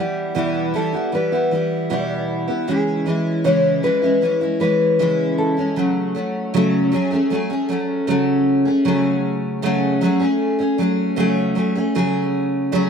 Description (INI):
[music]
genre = acoustic pop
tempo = 78 BPM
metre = 4/4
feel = straight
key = unclear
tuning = A4 = 439 Hz
[part]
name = nylon-string guitar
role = melody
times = 0.0-8.4 s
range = G4 to C#5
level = -20 LUFS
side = left 2 dB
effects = slapback echo
[part]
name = picked steel-string acoustic guitar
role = accompaniment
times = 0.0-12.9 s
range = E2 to G#4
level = -18 LUFS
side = equal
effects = double-tracked left and right, slapback echo
[sound]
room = little or no reverb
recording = recorded outdoors, with no room sound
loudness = -17 LUFS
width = side -6 dB against mid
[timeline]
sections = 0.0-8.9 A section; 8.9-12.9 B section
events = none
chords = 0.0 Em; 2.7 C#m; 5.8 F#madd9/C#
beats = 0.35 1.13 1.90 | 2.68 3.45 4.22 5.00 | 5.77 6.54 7.32 8.09 | 8.86 9.64 10.41 11.18 | 11.95 12.73